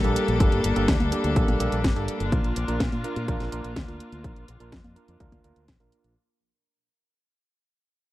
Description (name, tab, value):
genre	italo disco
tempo	125 BPM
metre	4/4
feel	straight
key	unclear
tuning	A4 = 440 Hz
part	clear studio string section	sustained chords	0.0-6.1 s	G3 to A4	-29 LUFS	left 3 dB	low-pass filter
part	overdriven tine electric piano	stabs	0.0-6.1 s	Bb3 to Bb4	-31 LUFS	right 4 dB	low-pass filter, tape echo
part	fingered electric bass with an envelope filter	bass	0.0-6.1 s	G1 to Bb2	-28 LUFS	equal	none
part	house drum kit	drums	0.0-6.1 s	congas, hi-hat, snare drum	-30 LUFS	equal	overdrive
part	electronic kick drum	drums	0.4-5.8 s	none	-25 LUFS	equal	overdrive
room	little or no reverb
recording	dry, close 1970s-style studio recording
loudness	-22 LUFS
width	side -16 dB against mid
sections	0.0-6.2 A section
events	fade-out 0.0-6.2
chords	0.0 Gmadd9; 2.3 Bb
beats	| 0.40 0.88 1.36 1.84 | 2.32 2.80 3.28 3.76 | 4.24 4.72 5.20 5.68